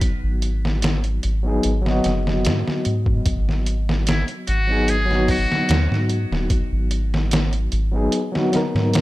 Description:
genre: trip hop.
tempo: 74 BPM.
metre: 4/4.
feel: straight.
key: G# minor.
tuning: A4 = 442 Hz.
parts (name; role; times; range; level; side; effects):
overdriven reed electric piano; accompaniment; 0.0-9.0 s; F#3 to D#5; -24 LUFS; left 1 dB; tremolo, tape echo.
trip hop sampler-style drum kit; drums; 0.0-9.0 s; hi-hat, kick drum, snare drum; -22 LUFS; equal; overdrive.
soft dub sub bass; bass; 0.2-9.0 s; D#1 to G#2; -21 LUFS; equal; tube saturation.
trumpet with metal mute; melody; 4.1-6.1 s; E4 to G#4; -25 LUFS; equal; tape echo.
room: digital ambience.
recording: none.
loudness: -18 LUFS.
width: side -17 dB against mid.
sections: 0.0-9.0 A section.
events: none.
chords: 0.0 G#m7.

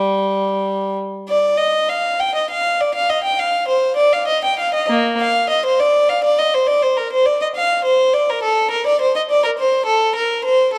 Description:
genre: classical, baroque-style suite movement for unaccompanied violin.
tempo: 68 BPM (dotted quarters).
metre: 12/8.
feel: rubato.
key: unclear.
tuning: A4 = 440 Hz.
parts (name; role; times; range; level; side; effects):
rich violin; solo; 0.0-10.8 s; G3 to G5; -17 LUFS; equal; none.
room: moderate recital hall reverb, RT60 1.5 s.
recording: dark, warm production.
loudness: -17 LUFS.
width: mono.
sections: 0.0-1.3 A section; 1.3-10.8 A section.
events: none.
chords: none.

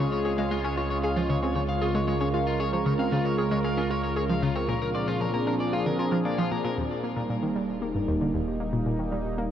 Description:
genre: ambient, sequencer-driven space music.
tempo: 115 BPM.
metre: 4/4.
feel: straight.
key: unclear.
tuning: A4 = 441 Hz.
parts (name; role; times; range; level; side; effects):
sweeping resonant pad; sustained chords; 0.0-9.5 s; Db2 to Bb4; -27 LUFS; right 1 dB; chorus.
electric guitar at the edge of break-up; arpeggios; 0.0-6.8 s; F4 to F5; -33 LUFS; left 2 dB; auto-pan, ping-pong delay.
analog pluck; riff; 0.0-9.4 s; Eb2 to Ab4; -29 LUFS; equal; chorus, vintage 12-bit sampler grit, ping-pong delay.
round analog bass; bass; 6.8-9.5 s; Eb1; -38 LUFS; equal; transformer saturation.
room: wet huge ambient reverb, RT60 8.6 s.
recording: worn, warbling old tape, cassette tape, warbly pitch drift.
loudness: -24 LUFS.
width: side -10 dB against mid.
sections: 0.0-6.8 A section; 6.8-9.5 B section.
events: filter sweep on synth arpeggio sound 0.0-6.8.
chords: 0.0 Db; 4.7 Bb7; 6.8 Eb.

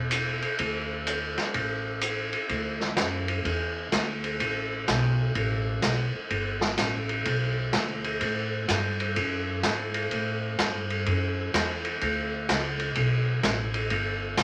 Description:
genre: country, western swing.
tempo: 126 BPM.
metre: 4/4.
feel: swing 66% on 8ths.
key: D major.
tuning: A4 = 440 Hz.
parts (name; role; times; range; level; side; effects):
upright bass; bass; 0.0-14.4 s; E1 to A2; -33 LUFS; equal; none.
vintage drum kit; drums; 0.1-14.4 s; hi-hat, ride cymbal, snare drum; -29 LUFS; equal; none.
room: moderate studio reverb, RT60 0.5 s.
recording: none.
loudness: -28 LUFS.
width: mono.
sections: 0.0-2.5 A section; 2.5-14.4 B section.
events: none.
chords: none.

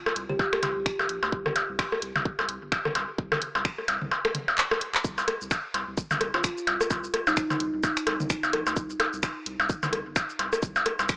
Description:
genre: minimal techno.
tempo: 129 BPM.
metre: 4/4.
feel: swing 58% on 16ths.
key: C minor.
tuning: A4 = 440 Hz.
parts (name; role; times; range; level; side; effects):
minimal click drum kit; percussion; 0.1-11.1 s; percussion blips, rim click, toms; -26 LUFS; equal; overdrive.
saturated sub bass; bass; 0.2-11.1 s; G1 to D2; -42 LUFS; equal; sidechain pumping.
garage drum kit; drums; 0.2-11.2 s; finger snaps, handclaps, hi-hat, shaker; -30 LUFS; equal; none.
kalimba; melody; 0.3-0.6, 6.3-7.5 s; Eb4 to G4; -33 LUFS; right 1 dB; tape echo.
electronic kick drum; drums; 0.4-11.2 s; none; -30 LUFS; equal; none.
room: light reverb.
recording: small speaker sound.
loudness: -25 LUFS.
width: side -23 dB against mid.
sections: 0.0-5.0 A section; 5.0-11.2 B section.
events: drum fill 4.6-5.0; drop 5.0-11.2.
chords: 0.0 C5.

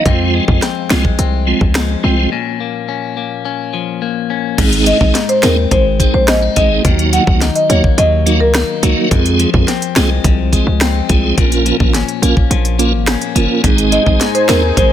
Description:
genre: dancehall.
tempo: 106 BPM.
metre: 4/4.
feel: straight.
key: Bb minor.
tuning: A4 = 442 Hz.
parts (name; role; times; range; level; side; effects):
marimba with medium mallets; melody; 0.0, 4.9-8.5, 13.9-14.9 s; Bb4 to Gb5; -16 LUFS; equal; ping-pong delay.
tonewheel organ; accompaniment; 0.0-14.6 s; F3 to Bb4; -17 LUFS; right 4 dB; overdrive, chorus vibrato, fast rotary speaker, sidechain pumping.
clean electric guitar; arpeggios; 0.0-14.9 s; F2 to Eb4; -19 LUFS; left 12 dB; none.
hard-hitting 808-style bass; bass; 0.1-14.9 s; Gb1 to F2; -15 LUFS; equal; none.
island pop drum kit; drums; 0.1-14.9 s; crash cymbal, finger snaps, hi-hat, kick drum, rim click, snare drum; -15 LUFS; equal; none.
lush unison pad; sustained chords; 13.6-14.9 s; Eb4 to Ab5; -20 LUFS; left 1 dB; chorus, phaser, sidechain pumping.
room: little or no reverb.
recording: none.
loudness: -11 LUFS.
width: side -10 dB against mid.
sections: 0.0-4.6 A section; 4.6-14.9 B section.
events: break 2.3-4.6.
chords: 0.1 Fm; 2.3 Bbm; 4.6 Ab; 6.8 Ebm; 9.1 Fm; 11.4 Bbm; 13.6 Ab.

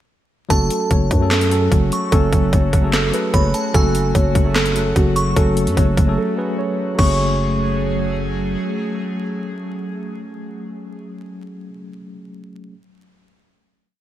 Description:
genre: hip hop, trap.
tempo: 148 BPM.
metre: 4/4.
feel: half-time.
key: F# minor.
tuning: A4 = 440 Hz.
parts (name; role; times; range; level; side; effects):
muted felt-like synth keys; melody; 0.5-8.2 s; F#4 to C#5; -24 LUFS; right 4 dB; chorus, low-pass filter, ping-pong delay.
delicate synth tine bell; second line; 0.5-8.2 s; G#5 to C#6; -26 LUFS; equal; chorus, ping-pong delay.
tine electric piano; accompaniment; 0.5-12.7 s; F#3 to B4; -24 LUFS; left 2 dB; medium stereo tremolo, low-pass filter.
airy breathy pad; sustained chords; 1.1-11.0 s; F#3 to G#4; -28 LUFS; right 2 dB; chorus.
growling 808-style bass; bass; 0.5-8.6 s; F#1 to F#2; -19 LUFS; equal; none.
trap drum kit; drums; 0.5-7.1 s; crash cymbal, handclaps, hi-hat, kick drum, snare drum; -18 LUFS; equal; overdrive, gated reverb.
room: light reverb, digital ambience.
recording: bright 1980s-style digital production, vinyl crackle.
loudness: -15 LUFS.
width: side -12 dB against mid.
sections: 0.5-7.0 hook; 7.0-10.2 final chord.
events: break 6.2-7.0.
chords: 0.5 F#madd9.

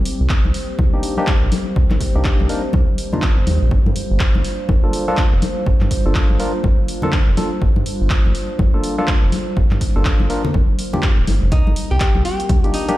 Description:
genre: deep house.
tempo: 123 BPM.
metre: 4/4.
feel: swing 61% on 16ths.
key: C minor.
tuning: A4 = 440 Hz.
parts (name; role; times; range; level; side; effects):
warbly tape-like pad; sustained chords; 0.0-13.0 s; G3 to C5; -27 LUFS; right 1 dB; chorus, built-in reverb, sidechain pumping.
round analog bass; bass; 0.0-12.6 s; D1 to G2; -18 LUFS; equal; sidechain pumping.
punchy analog drum machine; drums; 0.1-13.0 s; handclaps, hi-hat; -27 LUFS; equal; none.
electronic kick drum; drums; 0.3-12.6 s; none; -17 LUFS; equal; none.
congas; percussion; 0.4-13.0 s; none; -26 LUFS; left 3 dB; none.
barky tine electric piano; stabs; 0.9-13.0 s; Bb3 to Bb4; -24 LUFS; equal; sidechain pumping, analog delay.
archtop guitar, miked and amplified; melody; 11.5-13.0 s; Eb4 to G4; -24 LUFS; equal; none.
room: digital ambience.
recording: played on a big sound system in a bare room, large studio reverb.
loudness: -15 LUFS.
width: side -16 dB against mid.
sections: 0.0-13.0 A section.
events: none.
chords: 0.0 Cm7; 3.7 Gm7; 11.5 Cm7.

